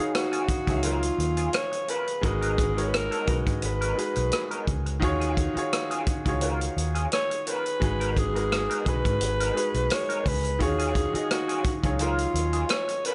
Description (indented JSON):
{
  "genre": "lush 1970s-style soul",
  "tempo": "86 BPM",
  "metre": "4/4",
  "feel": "swing 54% on 16ths",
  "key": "Eb minor",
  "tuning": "A4 = 440 Hz",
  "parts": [
    { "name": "raspy alto saxophone", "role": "melody", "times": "0.0-13.1 s", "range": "F4 to Db5", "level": "-31 LUFS", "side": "equal", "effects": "none" },
    { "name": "clear baby grand piano", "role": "accompaniment", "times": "0.0-13.1 s", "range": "Eb3 to Cb6", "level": "-33 LUFS", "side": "equal", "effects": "none" },
    { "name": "electric guitar through a small old amp", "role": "riff", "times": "0.1-13.1 s", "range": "Gb3 to Bb4", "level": "-37 LUFS", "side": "equal", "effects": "wah" },
    { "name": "vintage drum kit", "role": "drums", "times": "0.1-13.1 s", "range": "hi-hat, kick drum, rim click", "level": "-31 LUFS", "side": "equal", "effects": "none" },
    { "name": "vintage muted fingered electric bass", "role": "bass", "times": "0.5-12.6 s", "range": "Ab1 to Ab2", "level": "-32 LUFS", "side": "equal", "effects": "none" }
  ],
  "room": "small room ambience",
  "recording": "nothing above 10.9 kHz",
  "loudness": "-26 LUFS",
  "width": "mono",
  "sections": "0.0-13.1 A section",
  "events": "none",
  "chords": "0.0 Ebm11; 2.2 Abm9; 5.0 Ebm11; 7.8 Abm9; 10.6 Ebm11"
}